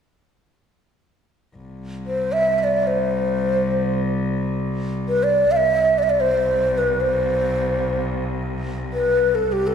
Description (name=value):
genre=Persian modal ensemble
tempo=free time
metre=none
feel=none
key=C dastgah mahur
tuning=A4 = 437 Hz
part: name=clear cello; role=drone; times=1.6-9.7 s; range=C2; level=-25 LUFS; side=left 1 dB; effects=none
part: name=breathy mellow ney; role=melody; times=2.1-9.7 s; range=G4 to F5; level=-19 LUFS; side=equal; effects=none
room=wet concert hall reverb, RT60 2.3 s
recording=recorded in a church or concert hall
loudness=-18 LUFS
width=side -7 dB against mid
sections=1.6-9.7 A section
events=none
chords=none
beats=free time